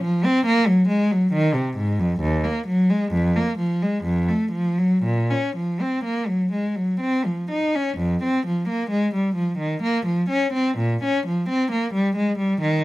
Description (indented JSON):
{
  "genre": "classical, baroque-style suite movement for unaccompanied cello",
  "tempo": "63 BPM",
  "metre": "3/4",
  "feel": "uneven beats, rubato",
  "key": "Bb minor, F minor from 8.0 s",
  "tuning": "A4 = 440 Hz",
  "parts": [
    { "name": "rich cello", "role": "solo", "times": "0.0-12.8 s", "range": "Eb2 to Eb4", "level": "-19 LUFS", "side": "equal", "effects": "none" }
  ],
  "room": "light reverb",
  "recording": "close, detailed microphones",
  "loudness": "-19 LUFS",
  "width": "side -18 dB against mid",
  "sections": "0.0-8.0 A section; 8.0-12.8 A section",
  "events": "none",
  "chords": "none"
}